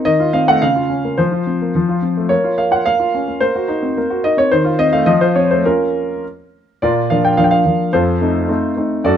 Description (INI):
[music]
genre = classical-period piano sonatina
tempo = 108 BPM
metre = 2/4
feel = straight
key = Bb minor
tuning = A4 = 440 Hz
[part]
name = warm grand piano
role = solo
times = 0.0-9.2 s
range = F2 to G5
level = -13 LUFS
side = equal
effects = none
[sound]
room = light reverb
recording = dark, warm production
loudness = -13 LUFS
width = side -9 dB against mid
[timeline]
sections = 0.0-6.8 A section; 6.8-9.2 B section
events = none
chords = 0.1 F7/Eb; 0.6 Bbm/Db; 1.2 Fsus4; 1.7 F; 2.3 Bbm; 3.4 Cm7b5/Bb; 4.5 F7/Eb; 5.1 F; 5.6 Bbm; 6.8 Bb; 7.9 F7